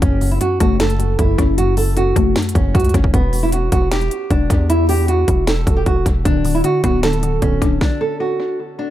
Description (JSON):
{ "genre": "hip hop, trap", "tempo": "154 BPM", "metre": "4/4", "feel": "half-time", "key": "F# phrygian", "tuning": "A4 = 439 Hz", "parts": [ { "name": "nylon-string guitar", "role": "melody", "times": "0.0-8.9 s", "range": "B3 to A4", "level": "-19 LUFS", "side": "right 1 dB", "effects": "analog delay" }, { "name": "mallet-like synth pluck", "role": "accompaniment", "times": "0.0-3.1, 6.3-8.6 s", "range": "F#2 to D4", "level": "-21 LUFS", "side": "left 2 dB", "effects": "chorus, analog delay" }, { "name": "hard-hitting 808-style bass", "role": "bass", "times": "0.0-7.8 s", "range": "D1 to E2", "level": "-18 LUFS", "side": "equal", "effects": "none" }, { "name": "trap drum kit", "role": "drums", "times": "0.0-7.9 s", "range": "hi-hat, kick drum, snare drum", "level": "-19 LUFS", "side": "equal", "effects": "none" } ], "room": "little or no reverb", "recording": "echo-heavy mix", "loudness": "-14 LUFS", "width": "side -13 dB against mid", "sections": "0.0-8.9 A section", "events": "stop 7.8-8.9", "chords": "0.0 F#m; 3.1 Emadd9; 6.3 D6" }